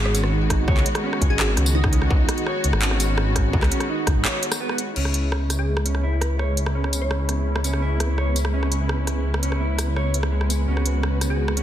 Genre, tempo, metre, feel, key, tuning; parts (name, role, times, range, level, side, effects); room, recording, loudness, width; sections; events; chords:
half-time drum and bass; 168 BPM; 4/4; half-time; C# minor; A4 = 440 Hz
glassy wavetable pluck; melody; 0.0-2.1, 5.6-7.3, 11.3-11.6 s; D#4 to C#5; -32 LUFS; equal; chorus, ping-pong delay
dark studio string section; sustained chords; 0.0-11.6 s; D#3 to F#4; -29 LUFS; left 1 dB; sidechain pumping, low-pass filter
dark detuned saw bass; bass; 0.0-11.6 s; G#1 to C#2; -22 LUFS; equal
electric guitar through a small old amp; arpeggios; 0.1-11.6 s; G#3 to C#5; -29 LUFS; right 3 dB; low-pass filter, ping-pong delay
industrial drum kit; drums; 0.1-11.6 s; crash cymbal, handclaps, hi-hat, rim click, tambourine; -27 LUFS; equal; studio reverb, soft clipping on snare
electronic kick drum; drums; 0.5-4.1 s; -21 LUFS; equal; distortion, studio reverb
flickering grainy texture; texture; 5.5-11.6 s; B3 to B4; -33 LUFS; right 2 dB; built-in reverb
light reverb; dense, heavily limited modern master; -19 LUFS; side -11 dB against mid
0.0-5.0 A section; 5.0-11.6 B section
drop 0.0-5.0; break 4.2-5.0; filter sweep on string section 5.0-11.6
0.0 G#m7; 5.0 C#m; 10.7 G#m7/C#